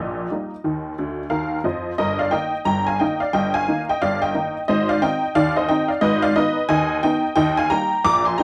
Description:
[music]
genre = ragtime piano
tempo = 89 BPM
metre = 2/4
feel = swing 59% on 16ths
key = Eb major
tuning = A4 = 440 Hz
[part]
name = honky-tonk upright piano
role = solo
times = 0.0-8.4 s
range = G1 to D6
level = -21 LUFS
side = equal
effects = none
[sound]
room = moderate studio reverb, RT60 0.6 s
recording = none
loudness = -21 LUFS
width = mono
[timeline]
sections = 0.0-2.0 A section; 2.0-8.4 B section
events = honky-tonk piano fill 1.0-2.0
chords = 0.0 Eb5; 2.0 Eb/G; 4.7 Ab; 6.0 Abm; 7.4 Eb

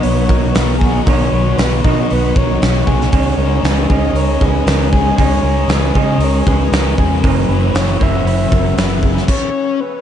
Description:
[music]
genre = rock, shoegaze and dream pop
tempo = 117 BPM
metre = 4/4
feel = straight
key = unclear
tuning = A4 = 438 Hz
[part]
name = breathy flute-like synth lead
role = melody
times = 0.0-10.0 s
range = A#4 to E5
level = -22 LUFS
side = left 2 dB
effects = chorus, tape echo
[part]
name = glassy FM pad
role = sustained chords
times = 0.0-9.3 s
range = B3 to E6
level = -26 LUFS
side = equal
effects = ensemble chorus, built-in reverb, tremolo
[part]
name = electric guitar through a small old amp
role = arpeggios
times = 0.0-9.3 s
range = G#4 to B5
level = -24 LUFS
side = right 2 dB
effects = lush chorus, tape echo
[part]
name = crunchy overdriven guitar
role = riff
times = 0.0-9.3 s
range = F#2 to D#4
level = -20 LUFS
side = right 9 dB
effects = reverse reverb
[part]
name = thick fuzz guitar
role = riff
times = 0.0-9.8 s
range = F#2 to C#4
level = -20 LUFS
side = left 8 dB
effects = distortion, wide subtle chorus
[part]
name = vintage muted fingered electric bass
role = bass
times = 0.0-9.2 s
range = F#1 to C#3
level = -17 LUFS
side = equal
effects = none
[part]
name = gated 80s drum kit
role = drums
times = 0.0-9.4 s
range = crash cymbal, hi-hat, kick drum, snare drum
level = -17 LUFS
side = equal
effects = none
[sound]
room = moderate huge ambient reverb, RT60 4.5 s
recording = dreamy mix soaked in reverb, vinyl crackle, nothing above 10.3 kHz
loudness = -12 LUFS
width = side -9 dB against mid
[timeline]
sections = 0.0-10.0 A section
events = stop 9.3-10.0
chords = 0.0 Badd9; 3.1 C#sus2; 7.2 F#7sus4

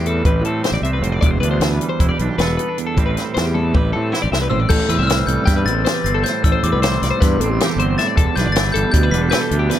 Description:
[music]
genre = math rock and midwest emo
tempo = 311 BPM (eighths)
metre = 9/8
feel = straight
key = A minor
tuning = A4 = 440 Hz
[part]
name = twangy electric guitar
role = accompaniment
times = 0.0-9.8 s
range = E2 to A4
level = -23 LUFS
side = right 8 dB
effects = none
[part]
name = twelve-string electric guitar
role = arpeggios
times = 0.0-9.8 s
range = G4 to E5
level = -23 LUFS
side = left 6 dB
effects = none
[part]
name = fuzz fingered electric bass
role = bass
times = 0.0-9.7 s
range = E1 to A2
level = -19 LUFS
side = equal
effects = overdrive
[part]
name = compact cocktail drum kit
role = drums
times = 0.1-9.8 s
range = crash cymbal, hi-hat, kick drum, snare drum, toms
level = -19 LUFS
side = equal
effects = none
[part]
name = glockenspiel with hard plastic mallets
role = melody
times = 4.5-9.8 s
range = C6 to B6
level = -23 LUFS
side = left 5 dB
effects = slapback echo
[sound]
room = light reverb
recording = none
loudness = -15 LUFS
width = side -11 dB against mid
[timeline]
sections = 0.0-4.7 A section; 4.7-9.8 B section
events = drum fill 3.5-4.7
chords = 0.0 Am7; 1.2 Em7; 3.0 Am7; 8.2 Em7

